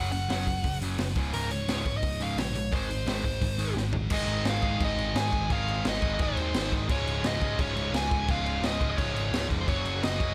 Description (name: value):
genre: punk rock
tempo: 173 BPM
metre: 4/4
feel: straight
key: Db major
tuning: A4 = 441 Hz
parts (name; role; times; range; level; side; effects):
- dark smooth lead guitar; melody; 0.0-10.3 s; Bb4 to Ab5; -35 LUFS; equal; overdrive, digital delay
- distorted electric guitar; riff; 0.0-10.3 s; Db2 to Ab4; -37 LUFS; equal; overdrive
- high-gain distorted guitar; riff; 0.0-10.3 s; Db2 to Ab3; -40 LUFS; equal; none
- sludgy distorted guitar; riff; 0.0-10.3 s; Db2 to Ab3; -39 LUFS; equal; overdrive
- overdriven picked electric bass; bass; 0.0-10.3 s; Db1 to Ab2; -35 LUFS; equal; none
- raw garage drum kit; drums; 0.1-10.3 s; crash cymbal, hi-hat, kick drum, snare drum, toms; -33 LUFS; equal; none
room: little or no reverb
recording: none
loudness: -28 LUFS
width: mono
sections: 0.0-4.1 A section; 4.1-10.3 B section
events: drum fill 3.8-4.1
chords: 0.0 Gb5; 1.2 Db5; 2.7 Ab; 6.9 Db; 9.7 Gb